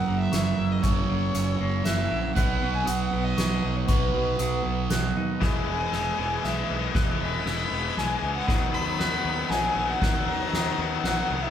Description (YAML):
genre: post-rock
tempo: 118 BPM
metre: 3/4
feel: straight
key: B major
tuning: A4 = 445 Hz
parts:
  - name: dark violin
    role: melody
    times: 0.0-11.5 s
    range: B4 to B5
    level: -30 LUFS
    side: equal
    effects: none
  - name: pedal steel guitar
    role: sustained chords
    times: 0.0-11.5 s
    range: D#3 to B4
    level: -39 LUFS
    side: right 2 dB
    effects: none
  - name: electric guitar through a small old amp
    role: arpeggios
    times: 0.0-11.5 s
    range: F#2 to E4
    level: -34 LUFS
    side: left 5 dB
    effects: none
  - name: glockenspiel with soft plastic mallets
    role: arpeggios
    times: 0.0-11.5 s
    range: C#6 to G#6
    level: -36 LUFS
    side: right 3 dB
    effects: none
  - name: sludgy distorted guitar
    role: riff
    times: 0.0-5.4 s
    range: F#2 to B3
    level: -28 LUFS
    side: right 5 dB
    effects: overdrive
  - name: fuzz fingered electric bass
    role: bass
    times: 0.0-11.5 s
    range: E1 to D#2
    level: -31 LUFS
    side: equal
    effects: overdrive
  - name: soft-mallet drum kit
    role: drums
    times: 0.3-11.2 s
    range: hi-hat, kick drum, ride cymbal, snare drum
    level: -29 LUFS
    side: equal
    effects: none
  - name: cranked stack guitar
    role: riff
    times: 5.4-11.5 s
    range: D#3 to G#3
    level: -29 LUFS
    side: left 8 dB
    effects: overdrive
room: wet large studio reverb, RT60 0.9 s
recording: band playing live in one room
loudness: -23 LUFS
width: side -9 dB against mid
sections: 0.0-5.4 A section; 5.4-11.5 B section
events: build-up 5.4-11.5; drum fill 5.4-11.5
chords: 0.0 F#7; 2.4 B; 5.4 Emaj7; 8.5 Bmaj7